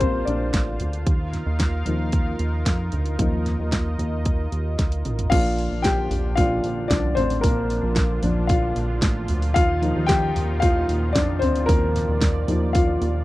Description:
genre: piano-driven pop.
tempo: 113 BPM.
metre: 4/4.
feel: straight.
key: Bb major.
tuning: A4 = 441 Hz.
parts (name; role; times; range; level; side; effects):
dark upright piano; accompaniment; 0.0-13.2 s; F3 to G5; -24 LUFS; left 2 dB; none.
warm analog pad; sustained chords; 0.0-13.2 s; Bb2 to F5; -32 LUFS; right 1 dB; chorus.
chorused synth bass; bass; 0.0-13.2 s; A1 to F2; -24 LUFS; equal; none.
pop drum kit; drums; 0.0-13.1 s; crash cymbal, hi-hat, kick drum, snare drum, toms; -23 LUFS; equal; none.
room: little or no reverb.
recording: dry, close 1970s-style studio recording.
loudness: -19 LUFS.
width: side -17 dB against mid.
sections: 0.0-5.3 A section; 5.3-13.2 B section.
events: upright piano solo 0.0-5.3, 5.3-13.2; drum fill 4.8-5.3.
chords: 0.0 Bb; 1.1 Ebsus2; 5.3 Bb; 9.6 Ebsus2.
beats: 0.01 0.54 | 1.07 1.60 2.13 2.66 | 3.19 3.72 4.25 4.79 | 5.32 5.85 6.38 6.91 | 7.44 7.97 8.50 9.03 | 9.56 10.10 10.63 11.16 | 11.69 12.22 12.75.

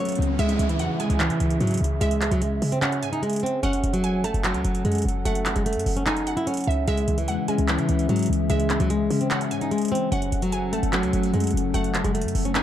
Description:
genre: hip hop, trap.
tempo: 148 BPM.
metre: 4/4.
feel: half-time.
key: C# minor.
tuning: A4 = 439 Hz.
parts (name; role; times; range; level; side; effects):
flamenco guitar; melody; 0.0-12.6 s; E3 to C#5; -26 LUFS; right 1 dB; tape echo.
mellow electric guitar; accompaniment; 0.0-0.4, 6.9-12.6 s; F#2 to C#5; -27 LUFS; left 6 dB; none.
dark analog pad; sustained chords; 0.0-12.6 s; C#3 to F#5; -33 LUFS; left 1 dB; chorus.
riser and downlifter; sound effects; 0.0-3.6 s; none; -35 LUFS; right 2 dB; none.
trap drum kit; drums; 0.1-12.6 s; handclaps, hi-hat; -30 LUFS; right 1 dB; overdrive.
short 808-style bass; bass; 0.2-12.6 s; F#1 to C#3; -25 LUFS; equal; none.
glassy wavetable pluck; second line; 0.4-12.6 s; E5 to A5; -33 LUFS; right 3 dB; chorus, tape echo.
room: digital ambience.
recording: dark, warm production.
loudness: -21 LUFS.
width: side -11 dB against mid.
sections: 0.4-12.6 A section.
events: riser 0.0-0.4.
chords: 0.4 C#m; 3.6 F#m; 6.9 C#m; 10.1 F#m.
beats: | 0.39 0.80 1.20 1.61 | 2.01 2.42 2.82 3.23 | 3.63 4.04 4.44 4.85 | 5.25 5.66 6.07 6.47 | 6.88 7.28 7.69 8.09 | 8.50 8.90 9.31 9.71 | 10.12 10.53 10.93 11.34 | 11.74 12.15 12.55.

